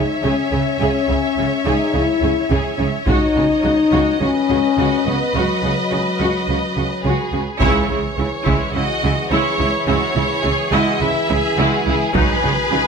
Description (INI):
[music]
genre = cinematic, epic orchestral film score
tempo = 106 BPM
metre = 4/4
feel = straight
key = C# minor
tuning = A4 = 438 Hz
[part]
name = clear symphonic violin section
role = melody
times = 0.0-12.9 s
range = G#4 to E5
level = -23 LUFS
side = left 1 dB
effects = none
[part]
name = clear symphonic violin section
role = second line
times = 0.0-12.9 s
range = E4 to C#5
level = -25 LUFS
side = left 1 dB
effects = none
[part]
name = rich symphonic viola section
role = accompaniment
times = 0.0-12.8 s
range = F#3 to G#4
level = -23 LUFS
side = right 2 dB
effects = none
[part]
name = mellow French horn section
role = sustained chords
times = 0.0-12.9 s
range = D#3 to G#4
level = -21 LUFS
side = left 5 dB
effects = none
[part]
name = rich symphonic cello section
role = bass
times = 0.0-12.8 s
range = C#3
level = -24 LUFS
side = right 3 dB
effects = none
[part]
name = rich symphonic double bass section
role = bass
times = 0.0-12.8 s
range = C#2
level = -24 LUFS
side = right 3 dB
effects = none
[part]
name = solo taiko drums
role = drums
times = 3.1-4.2, 7.6-8.7, 12.1-12.9 s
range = none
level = -23 LUFS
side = right 1 dB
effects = none
[sound]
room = moderate scoring stage reverb, RT60 1.7 s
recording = close, detailed microphones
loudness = -15 LUFS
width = side -6 dB against mid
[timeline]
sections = 0.0-7.6 A section; 7.6-12.9 A section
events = band accent 7.6-8.2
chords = 0.0 C#m; 3.1 B/C#; 7.6 C#m; 12.1 B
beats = 0.24 | 0.80 1.37 1.94 2.51 | 3.07 3.64 4.21 4.78 | 5.34 5.91 6.48 7.05 | 7.61 8.18 8.75 9.31 | 9.88 10.45 11.02 11.58 | 12.15 12.72